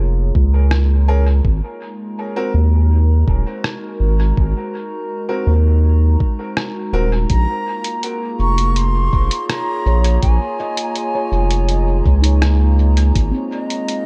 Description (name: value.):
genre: ambient dub.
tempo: 82 BPM.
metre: 4/4.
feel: straight.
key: Ab mixolydian.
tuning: A4 = 441 Hz.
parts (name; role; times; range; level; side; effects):
warbly tape-like pad; sustained chords; 0.0-14.1 s; Ab3 to Bb5; -28 LUFS; equal; chorus, built-in reverb.
round analog bass; bass; 0.0-13.3 s; Eb1 to Eb2; -16 LUFS; equal; tube saturation.
electronic kick drum; drums; 0.4-13.3 s; none; -20 LUFS; equal; none.
lo-fi sampler-style drum kit; drums; 0.7-14.0 s; hi-hat, rim click; -27 LUFS; equal; dub echo.
bright upright piano; stabs; 1.1-7.1 s; C4 to Bb4; -30 LUFS; equal; dub echo.
bright wooden flute; melody; 7.3-14.1 s; Eb5 to Db6; -26 LUFS; equal; dub echo.
handpan; arpeggios; 9.9-14.0 s; C4 to Eb5; -28 LUFS; equal; dub echo.
room: light reverb, small room ambience.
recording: echo-heavy mix.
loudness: -17 LUFS.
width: mono.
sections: 0.0-14.1 A section.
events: none.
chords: 0.0 Bbm7; 1.4 Ab7sus2; 7.3 Bbm7; 13.2 Ab9.